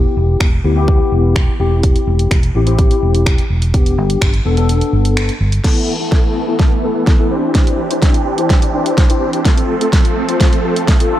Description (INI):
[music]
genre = dance-pop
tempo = 126 BPM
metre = 4/4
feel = straight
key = C major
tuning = A4 = 440 Hz
[part]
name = mellow tine electric piano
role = accompaniment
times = 0.0-11.2 s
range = B3 to C5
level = -18 LUFS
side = left 4 dB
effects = ensemble chorus, sidechain pumping, low-pass filter
[part]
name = vintage muted fingered electric bass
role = bass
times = 0.0-5.6 s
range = E1 to D2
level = -15 LUFS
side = equal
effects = sidechain pumping
[part]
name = pop drum kit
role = drums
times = 0.4-11.1 s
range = crash cymbal, finger snaps, hi-hat, kick drum, snare drum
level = -14 LUFS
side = equal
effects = none
[part]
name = supersaw chords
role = sustained chords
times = 5.6-11.2 s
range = E3 to A4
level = -19 LUFS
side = right 3 dB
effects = phaser, sidechain pumping, low-pass filter
[sound]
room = light reverb, digital ambience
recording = none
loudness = -11 LUFS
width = side -12 dB against mid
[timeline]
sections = 0.0-5.6 A section; 5.6-11.2 B section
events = kick muted 4.7-5.6; build-up 5.6-11.2; drum fill 5.6-11.2; filter sweep 5.6-11.2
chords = 0.0 Em; 1.6 C/E; 3.7 G; 5.6 Esus4; 7.3 Cadd9; 9.5 F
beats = 0.41 0.88 1.36 | 1.83 2.31 2.79 3.26 | 3.74 4.22 4.69 5.17 | 5.64 6.12 6.60 7.07 | 7.55 8.03 8.50 8.98 | 9.45 9.93 10.41 10.88